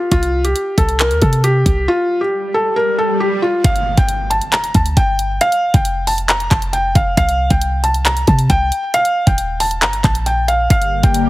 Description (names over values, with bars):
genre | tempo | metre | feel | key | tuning
hip hop, trap | 136 BPM | 4/4 | half-time | G minor | A4 = 441 Hz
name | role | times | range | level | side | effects
felt-muted upright piano | melody | 0.0-11.3 s | F4 to Bb5 | -16 LUFS | equal | none
clean 808-style bass | bass | 0.1-11.3 s | Eb1 to C3 | -17 LUFS | equal | none
trap drum kit | drums | 0.1-11.2 s | handclaps, hi-hat, kick drum | -16 LUFS | equal | none
swell and impact | sound effects | 2.3-5.4 s | none | -23 LUFS | left 1 dB | none
airy breathy pad | sustained chords | 10.9-11.3 s | D3 to G4 | -18 LUFS | left 5 dB | chorus, phaser
room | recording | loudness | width
digital ambience | heavily compressed radio sound | -13 LUFS | side -17 dB against mid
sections
0.0-3.6 A section; 3.6-11.3 B section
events
swell 2.3-3.6; impact 3.6-5.4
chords
0.1 C5; 1.9 N.C.; 3.6 G5; 5.4 Fadd9; 7.2 C5; 8.9 Eb; 10.7 Gm